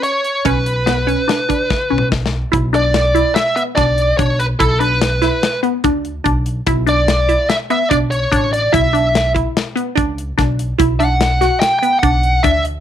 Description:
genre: progressive instrumental, band music in an uneven meter.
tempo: 145 BPM.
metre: 5/4.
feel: straight.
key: unclear.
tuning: A4 = 440 Hz.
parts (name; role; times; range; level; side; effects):
bluesy overdriven lead guitar; melody; 0.0-12.6 s; A4 to G5; -16 LUFS; equal; distortion.
resonant blip pluck; arpeggios; 0.0-12.7 s; B3 to F#4; -19 LUFS; right 1 dB; phaser.
tight metal drum kit; drums; 0.0-12.7 s; hi-hat, kick drum, snare drum, toms; -20 LUFS; left 3 dB; none.
upright bass; bass; 0.5-12.8 s; A1 to D2; -19 LUFS; equal; none.
room: light reverb, studio reverb.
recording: 1960s-style stereo.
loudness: -13 LUFS.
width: side -10 dB against mid.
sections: 0.0-2.5 A section; 2.5-12.8 B section.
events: drum fill 1.7-2.5.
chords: 0.0 Bmadd9; 2.5 E5/B; 6.7 Dsus2; 10.8 E7sus2 (rootless).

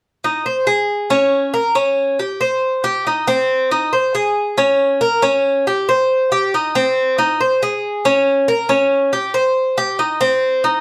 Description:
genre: latin.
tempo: 138 BPM.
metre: 4/4.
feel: straight.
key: Ab major.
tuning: A4 = 437 Hz.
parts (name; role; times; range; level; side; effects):
Cuban tres; arpeggios; 0.2-10.8 s; C4 to C5; -17 LUFS; equal; none.
room: wet studio reverb, RT60 0.7 s.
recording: none.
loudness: -17 LUFS.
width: mono.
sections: 0.0-10.8 A section.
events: none.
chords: none.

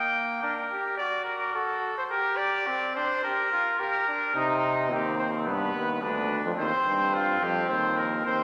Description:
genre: classical, imitative canzona for brass ensemble.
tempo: 107 BPM.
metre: 4/4.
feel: straight.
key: C minor.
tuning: A4 = 439 Hz.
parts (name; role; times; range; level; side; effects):
clear trumpet; melody; 0.0-8.4 s; Eb4 to G5; -30 LUFS; equal; none.
clear trumpet; second line; 0.0-8.4 s; Bb3 to G4; -33 LUFS; equal; none.
warm euphonium; bass; 4.4-8.4 s; D2 to C3; -31 LUFS; equal; none.
room: wet church reverb, RT60 2.7 s.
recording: none.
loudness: -27 LUFS.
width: mono.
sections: 0.0-8.4 A section.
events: none.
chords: 0.0 Gm/Bb; 1.0 D/F#; 2.1 Gm; 4.4 Cm; 5.5 G; 6.6 Cm/Eb.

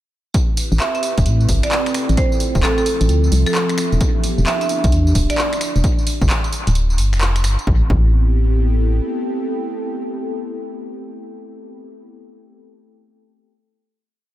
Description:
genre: UK garage, two-step garage.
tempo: 131 BPM.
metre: 4/4.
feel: swing 64% on 16ths.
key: A minor.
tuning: A4 = 440 Hz.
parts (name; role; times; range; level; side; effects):
airy breathy pad; sustained chords; 0.3-12.1 s; B3 to B4; -28 LUFS; right 1 dB; chorus, sidechain pumping.
electronic kick drum; drums; 0.3-8.1 s; none; -18 LUFS; equal; none.
punchy analog drum machine; drums; 0.3-7.7 s; finger snaps, handclaps, hi-hat, tambourine; -24 LUFS; equal; dub echo.
deep dark ambient pad; texture; 1.0-12.1 s; F3 to G5; -26 LUFS; equal; chorus, built-in reverb, sidechain pumping.
organ-like FM bass; bass; 0.7-9.0 s; D1 to A2; -15 LUFS; equal; none.
marimba with hard mallets; melody; 0.8-5.5 s; A4 to E5; -23 LUFS; right 2 dB; dub echo.
room: digital ambience.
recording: echo-heavy mix.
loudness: -15 LUFS.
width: side -14 dB against mid.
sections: 0.3-7.7 drop; 7.7-11.3 final chord.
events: drop 0.3-7.7.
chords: 0.3 Am7; 2.2 Dm9; 3.8 Em7; 5.8 G5; 7.7 Am7.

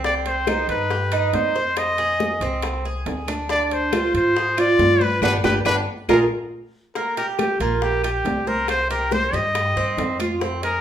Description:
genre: latin, Cuban son and guajira.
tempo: 139 BPM.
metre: 4/4.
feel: straight.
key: C harmonic minor, C minor from 7.0 s.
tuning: A4 = 440 Hz.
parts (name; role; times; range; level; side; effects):
clear trumpet; melody; 0.0-10.8 s; F4 to Eb5; -22 LUFS; left 1 dB; none.
Cuban tres; arpeggios; 0.0-10.8 s; Bb3 to C5; -23 LUFS; right 3 dB; none.
upright bass; bass; 0.0-10.8 s; G1 to Ab2; -28 LUFS; left 1 dB; none.
bongos; percussion; 0.0-10.8 s; none; -30 LUFS; left 5 dB; none.
congas; percussion; 0.0-10.8 s; none; -31 LUFS; left 2 dB; none.
timbales; percussion; 0.3-10.8 s; none; -33 LUFS; right 4 dB; none.
claves; percussion; 0.5-10.4 s; none; -35 LUFS; left 3 dB; none.
room: wet large studio reverb, RT60 0.9 s.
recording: band playing live in one room.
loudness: -18 LUFS.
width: side -10 dB against mid.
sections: 0.0-7.0 A section; 7.0-10.8 B section.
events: band accent 5.2-7.0; drum fill 6.7.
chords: 0.0 Cm; 1.8 Fm; 3.5 Ddim; 5.2 G; 6.1 Bb5; 7.0 Gmadd11/Bb; 8.7 Cm.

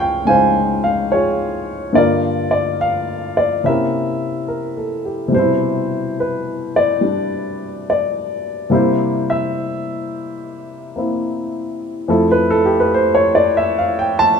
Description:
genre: solo jazz.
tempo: 71 BPM.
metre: 4/4.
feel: swing 68% on 8ths.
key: C major from 5.3 s.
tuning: A4 = 440 Hz.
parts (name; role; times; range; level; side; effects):
dark upright piano; solo; 0.0-14.4 s; Db2 to A5; -15 LUFS; equal; none.
room: moderate large studio reverb, RT60 0.8 s.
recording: minimal, uncompressed stereo recording.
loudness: -15 LUFS.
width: side -6 dB against mid.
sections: 0.0-5.3 A section; 5.3-14.4 B section.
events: upright piano solo 5.3-14.4.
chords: 0.0 Dbmaj7; 2.0 Gm7; 3.6 C7b9; 5.3 Cmaj7; 8.7 C7; 12.1 Fmaj7.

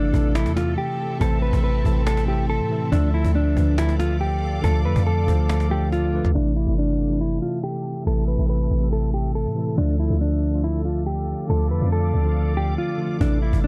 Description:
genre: hip hop, trap.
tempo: 140 BPM.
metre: 4/4.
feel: half-time.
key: A minor.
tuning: A4 = 440 Hz.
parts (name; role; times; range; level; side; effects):
mellow electric guitar; melody; 0.0-13.7 s; D4 to B4; -29 LUFS; equal; digital delay.
tine electric piano; accompaniment; 0.0-13.7 s; C3 to C5; -28 LUFS; equal; overdrive.
granular cloud pad; sustained chords; 0.0-13.7 s; C4 to D6; -39 LUFS; equal; built-in reverb.
warm 808-style bass; bass; 0.0-13.7 s; G1 to A2; -24 LUFS; equal; none.
cajon; drums; 0.1-6.3, 13.2-13.7 s; none; -33 LUFS; equal; none.
room: little or no reverb.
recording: dark, warm production, low-pass filter.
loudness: -22 LUFS.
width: mono.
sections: 0.0-6.4 A section; 6.4-13.2 B section.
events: filter sweep 6.4-13.2; break 12.8-13.2.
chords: 0.0 Am; 2.9 Dm; 6.4 Am; 9.8 Dm.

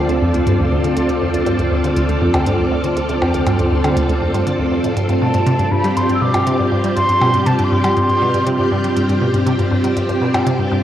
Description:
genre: ambient, sequencer-driven space music.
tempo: 120 BPM.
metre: 4/4.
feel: straight.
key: unclear.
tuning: A4 = 440 Hz.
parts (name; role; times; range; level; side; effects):
string machine, full ensemble; sustained chords; 0.0-10.8 s; C4 to D5; -18 LUFS; equal; ensemble chorus.
resonant blip pluck; riff; 0.0-10.8 s; D2 to G3; -18 LUFS; equal; phaser, vintage 12-bit sampler grit, analog delay.
electronic hi-hat and percussion blips; percussion; 0.1-10.6 s; none; -25 LUFS; left 1 dB; overdrive, analog delay.
mellow silver concert flute; melody; 5.2-8.7 s; A5 to E6; -19 LUFS; equal; analog delay.
room: wet plate reverb, RT60 2.7 s.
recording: worn, warbling old tape, cassette tape, warbly pitch drift.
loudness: -14 LUFS.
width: side -11 dB against mid.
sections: 0.0-10.8 A section.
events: none.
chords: 0.0 Dm7; 5.0 G7sus4.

